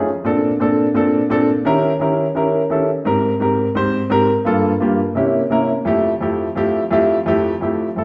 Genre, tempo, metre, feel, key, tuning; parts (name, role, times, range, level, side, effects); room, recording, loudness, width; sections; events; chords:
jazz; 171 BPM; 4/4; straight; F major; A4 = 440 Hz
warm grand piano; solo; 0.0-8.0 s; F2 to C5; -17 LUFS; equal
wet large studio reverb, RT60 1.3 s; heard from further back in the room; -17 LUFS; mono
0.0-8.0 A section
0.1 Bbmaj7; 1.5 Eb7b9; 2.9 Abmaj7; 4.3 Gm7; 5.0 C7b9; 5.7 Fmaj7